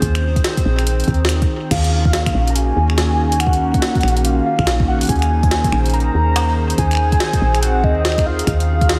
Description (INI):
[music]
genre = IDM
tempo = 142 BPM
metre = 4/4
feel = swing 62% on 16ths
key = Eb dorian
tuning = A4 = 440 Hz
[part]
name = hollow soft pad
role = sustained chords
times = 0.0-9.0 s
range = Eb3 to C5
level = -24 LUFS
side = equal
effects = chorus, vintage 12-bit sampler grit
[part]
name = woody FM bass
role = bass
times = 0.0-9.0 s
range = Bb1 to Eb2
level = -20 LUFS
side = equal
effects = none
[part]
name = electronic kick drum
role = drums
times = 0.0-8.9 s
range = none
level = -21 LUFS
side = equal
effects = none
[part]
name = jungle sampler-style drum kit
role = drums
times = 0.0-9.0 s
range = crash cymbal, finger snaps, hi-hat, snare drum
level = -25 LUFS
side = equal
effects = overdrive, analog delay
[part]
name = warm velvety synth lead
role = melody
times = 1.7-9.0 s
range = Eb5 to Bb5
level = -23 LUFS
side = equal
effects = chorus, tremolo, analog delay
[sound]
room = moderate lush hall reverb, RT60 1.7 s, digital ambience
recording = dreamy mix soaked in reverb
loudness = -17 LUFS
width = mono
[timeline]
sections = 0.0-9.0 A section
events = none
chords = 0.0 Bb9sus4; 1.7 Ebm11; 5.1 Bbm9; 6.8 Bb9sus4; 8.5 Ebm11